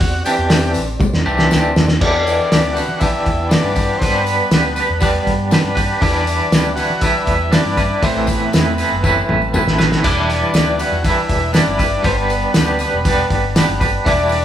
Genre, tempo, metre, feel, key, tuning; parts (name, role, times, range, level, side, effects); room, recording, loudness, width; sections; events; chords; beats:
psychedelic rock; 119 BPM; 4/4; straight; E minor; A4 = 440 Hz
combo organ; melody; 0.0-14.4 s; B3 to G4; -22 LUFS; left 2 dB
tonewheel organ; sustained chords; 0.0-14.4 s; C4 to B5; -32 LUFS; right 1 dB
picked electric bass; bass; 0.0-14.4 s; E1 to E3; -22 LUFS; equal
cloth-damped thuddy drum kit; drums; 0.0-14.4 s; crash cymbal, hi-hat, kick drum, snare drum, toms; -17 LUFS; equal
tambourine; percussion; 0.0-14.4 s; -35 LUFS; left 5 dB
twangy electric guitar; riff; 0.3-14.4 s; A2 to B4; -17 LUFS; right 1 dB; tremolo
light reverb; band playing live in one room; -13 LUFS; side -10 dB against mid
0.0-2.0 A section; 2.0-14.4 B section
transistor combo organ solo 0.0-2.0; drum fill 1.0-2.0, 9.0-10.0
0.0 Csus2; 2.0 Em7; 8.0 Amadd9; 10.0 Em7
| 0.02 0.51 1.01 1.51 | 2.01 2.51 3.01 3.51 | 4.01 4.51 5.01 5.51 | 6.01 6.52 7.02 7.52 | 8.02 8.53 9.03 9.53 | 10.04 10.54 11.04 11.55 | 12.05 12.55 13.06 13.56 | 14.06